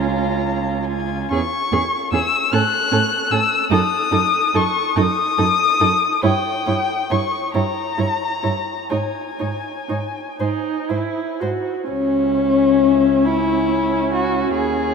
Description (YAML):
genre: classical, slow romantic movement for string quartet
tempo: 39-51 BPM (dotted quarters)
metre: 6/8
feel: rubato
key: C# minor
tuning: A4 = 437 Hz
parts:
  - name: muted violin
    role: melody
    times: 0.0-14.9 s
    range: E5 to F#6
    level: -21 LUFS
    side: left 5 dB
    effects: none
  - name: muted violin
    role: second line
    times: 0.0-14.9 s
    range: C#4 to C#5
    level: -21 LUFS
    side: left 3 dB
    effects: none
  - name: muted viola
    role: accompaniment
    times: 0.0-14.9 s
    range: C#4 to F#4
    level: -25 LUFS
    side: right 4 dB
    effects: none
  - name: muted cello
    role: bass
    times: 0.0-14.9 s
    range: Db2 to A2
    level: -23 LUFS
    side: right 5 dB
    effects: none
room: wet cathedral reverb, RT60 5.8 s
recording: in a vast, echoing space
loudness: -17 LUFS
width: side -5 dB against mid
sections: 0.0-11.9 A section; 11.9-14.9 B section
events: none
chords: 0.0 Db; 1.3 C#m/E; 2.5 A6; 3.7 D#m/F#; 6.2 Gdim7; 8.9 G#5; 11.9 C#m